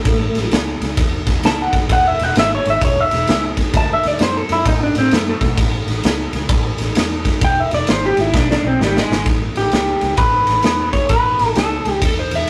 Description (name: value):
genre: electric blues shuffle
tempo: 130 BPM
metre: 4/4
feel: swing 64% on 8ths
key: unclear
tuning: A4 = 442 Hz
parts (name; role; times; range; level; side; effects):
- electric guitar through a small old amp; melody; 0.0-12.0 s; G3 to A5; -19 LUFS; equal; none
- vintage muted fingered electric bass; bass; 0.1-12.5 s; E1 to A2; -26 LUFS; equal; none
- raw garage drum kit; drums; 0.1-12.5 s; kick drum, ride cymbal, snare drum; -20 LUFS; equal; none
- overdriven slide guitar; second line; 12.1-12.5 s; A4 to E5; -23 LUFS; equal; none
room: moderate booth ambience, RT60 0.2 s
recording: rough rehearsal-room recording, tube saturation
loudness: -16 LUFS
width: mono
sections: 0.0-9.3 A section; 9.3-12.5 B section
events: clean electric guitar solo 0.0-9.3; drum fill 8.3-9.3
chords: 0.0 A; 1.9 E6; 3.7 D; 5.6 A; 7.4 E; 9.3 Aadd9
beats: | 0.06 0.52 0.98 1.44 | 1.90 2.36 2.82 3.28 | 3.74 4.20 4.66 5.12 | 5.58 6.04 6.50 6.96 | 7.42 7.88 8.34 8.80 | 9.26 9.72 10.18 10.64 | 11.10 11.56 12.02 12.48